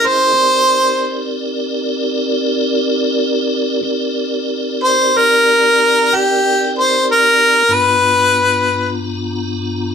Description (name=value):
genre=blues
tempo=63 BPM (dotted quarters)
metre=12/8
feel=straight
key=C minor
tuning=A4 = 440 Hz
part: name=bright harmonica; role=melody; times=0.0-8.9 s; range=G4 to C5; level=-11 LUFS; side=equal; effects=overdrive
part: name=tonewheel organ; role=sustained chords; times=0.0-9.9 s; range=G2 to A#5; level=-18 LUFS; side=equal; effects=slow rotary speaker, chorus vibrato
room=moderate studio reverb, RT60 0.8 s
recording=band playing live in one room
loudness=-12 LUFS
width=side -7 dB against mid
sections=0.0-9.9 A section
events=harmonica solo 0.0-9.9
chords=0.0 Cm9; 7.7 G7#9